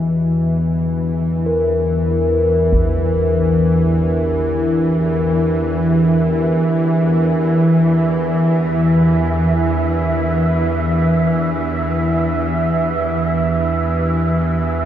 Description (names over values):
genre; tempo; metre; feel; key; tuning
dark ambient drone; free time; none; none; E minor; A4 = 440 Hz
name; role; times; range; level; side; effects
dark analog pad; sustained chords; 0.0-14.9 s; D4 to G4; -27 LUFS; equal; chorus, phaser
quartz singing bowl; arpeggios; 0.0-9.0 s; E3 to A#4; -22 LUFS; left 2 dB; tape echo
bowed-like drone; drone; 0.0-14.9 s; E2 to E3; -16 LUFS; equal; built-in reverb
taiko ensemble; percussion; 2.7-3.0 s; none; -23 LUFS; equal; low-pass filter on perc
wind-like tuned noise texture; texture; 5.7-14.9 s; E5; -24 LUFS; right 3 dB; built-in reverb
room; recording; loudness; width
wet cathedral reverb, RT60 5.7 s; dark, warm production; -14 LUFS; side -10 dB against mid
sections
0.0-14.9 A section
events
fade-out on analog synth pad 0.0-14.9; filter sweep on synth drone 0.0-14.9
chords
0.0 Em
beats
free time